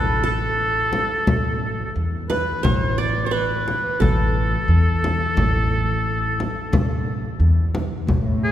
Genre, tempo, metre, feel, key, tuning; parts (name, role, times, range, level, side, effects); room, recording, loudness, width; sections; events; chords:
Arabic maqam ensemble; 88 BPM; 4/4; straight; A maqam suznak; A4 = 439 Hz
clear oboe; melody; 0.0-8.5 s; G#4 to D5; -24 LUFS; equal
qanun; second line; 0.0-7.4 s; A4 to D5; -28 LUFS; right 4 dB
upright bass; bass; 0.0-8.4 s; A1 to E2; -22 LUFS; equal
frame drum; percussion; 0.9-8.2 s; -24 LUFS; left 1 dB
muted studio cello section; drone; 8.1-8.5 s; A2; -24 LUFS; left 1 dB
wet church reverb, RT60 3.6 s; recorded in a church or concert hall; -18 LUFS; side -11 dB against mid
0.0-8.1 A section